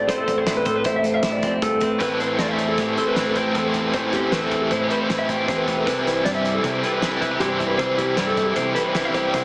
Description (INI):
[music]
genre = math rock and midwest emo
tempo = 156 BPM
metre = 5/4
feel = straight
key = A minor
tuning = A4 = 437 Hz
[part]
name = twelve-string electric guitar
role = accompaniment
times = 0.0-9.4 s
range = A2 to C5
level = -25 LUFS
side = equal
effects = spring reverb
[part]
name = mellow electric guitar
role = arpeggios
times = 0.0-9.4 s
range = G4 to E5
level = -22 LUFS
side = equal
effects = spring reverb
[part]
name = growling fingered electric bass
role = bass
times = 0.0-9.4 s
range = F1 to C3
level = -31 LUFS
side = equal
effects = overdrive
[part]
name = loose indie drum kit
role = drums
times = 0.1-9.4 s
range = hi-hat, kick drum, snare drum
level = -29 LUFS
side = equal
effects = none
[part]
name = cranked stack guitar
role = riff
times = 2.0-9.4 s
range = A2 to E4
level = -23 LUFS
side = equal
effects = overdrive, tremolo
[sound]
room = light reverb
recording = heavily compressed radio sound, small speaker sound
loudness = -18 LUFS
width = side -31 dB against mid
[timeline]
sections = 0.0-2.0 A section; 2.0-9.4 B section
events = none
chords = 0.1 D7sus2/A (rootless); 2.0 Am7; 5.9 Cmaj7